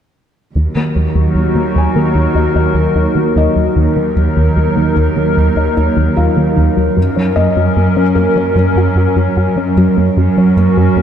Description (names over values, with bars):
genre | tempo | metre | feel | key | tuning
cinematic | 75 BPM | 4/4 | straight | Eb minor | A4 = 440 Hz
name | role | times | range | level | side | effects
hollow soft pad | sustained chords | 0.8-11.0 s | Gb3 to Bb4 | -15 LUFS | left 1 dB | chorus
soft round pluck | arpeggios | 0.6-11.0 s | Eb3 to Gb4 | -20 LUFS | left 3 dB | chorus, digital delay
rubbery square bass | riff | 0.6-11.0 s | Eb2 to Gb3 | -14 LUFS | right 1 dB | none
rich symphonic cello section | bass | 0.6-11.0 s | Eb2 to Gb2 | -18 LUFS | right 3 dB | none
felt-muted upright piano | texture | 1.8-11.0 s | Bb3 to Ab5 | -22 LUFS | left 2 dB | digital delay
room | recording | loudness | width
moderate scoring stage reverb, RT60 1.9 s | none | -10 LUFS | side -9 dB against mid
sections
0.6-11.0 A section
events
none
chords
0.6 Ebm; 7.0 Gb